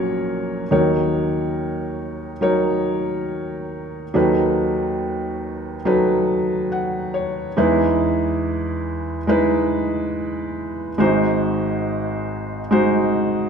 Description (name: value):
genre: folk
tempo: 70 BPM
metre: 4/4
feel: straight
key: unclear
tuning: A4 = 440 Hz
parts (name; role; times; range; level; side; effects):
- felt-muted upright piano; solo; 0.0-13.5 s; Ab1 to Gb5; -18 LUFS; equal; none
room: moderate scoring stage reverb, RT60 2.2 s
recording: minimal, uncompressed stereo recording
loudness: -18 LUFS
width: side -6 dB against mid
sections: 0.7-13.5 A section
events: none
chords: 0.0 Gb/Bb; 0.7 Ebm7; 4.1 Cb7/Eb; 7.6 Emaj7; 11.0 Ab7